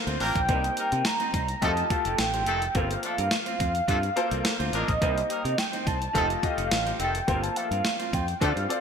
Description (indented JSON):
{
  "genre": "early-eighties boogie funk",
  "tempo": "106 BPM",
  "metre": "4/4",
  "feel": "straight",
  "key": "G minor",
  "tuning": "A4 = 439 Hz",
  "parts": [
    { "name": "clear baby grand piano", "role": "accompaniment", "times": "0.0-8.8 s", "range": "A3 to Eb5", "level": "-32 LUFS", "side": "left 4 dB", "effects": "analog chorus" },
    { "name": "clean electric guitar", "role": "riff", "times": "0.1-8.7 s", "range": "C4 to C5", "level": "-36 LUFS", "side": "right 6 dB", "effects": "wide subtle chorus" },
    { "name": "modern bright fingered electric bass", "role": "bass", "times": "0.1-8.7 s", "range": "F1 to D3", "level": "-31 LUFS", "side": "equal", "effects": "none" },
    { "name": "clean 12-bit digital drum machine", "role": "drums", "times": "0.1-8.8 s", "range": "hi-hat, kick drum, snare drum", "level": "-29 LUFS", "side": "equal", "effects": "gated reverb" },
    { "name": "warm velvety synth lead", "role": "melody", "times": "0.2-8.8 s", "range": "Eb5 to Bb5", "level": "-28 LUFS", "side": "right 1 dB", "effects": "chorus" },
    { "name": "clear horn section", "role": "second line", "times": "0.2-8.5 s", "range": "Eb3 to Bb4", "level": "-34 LUFS", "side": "left 3 dB", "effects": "none" }
  ],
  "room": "light reverb",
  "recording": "bright 1980s-style digital production",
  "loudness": "-24 LUFS",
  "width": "side -6 dB against mid",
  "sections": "0.0-8.8 A section",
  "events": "none",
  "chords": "0.5 Cm7; 1.6 F9; 2.8 Gm11; 5.0 Cm7; 6.1 F9; 7.3 Gm11",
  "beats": "| 0.49 1.05 1.62 2.19 | 2.75 3.32 3.88 4.45 | 5.02 5.58 6.15 6.71 | 7.28 7.85 8.41"
}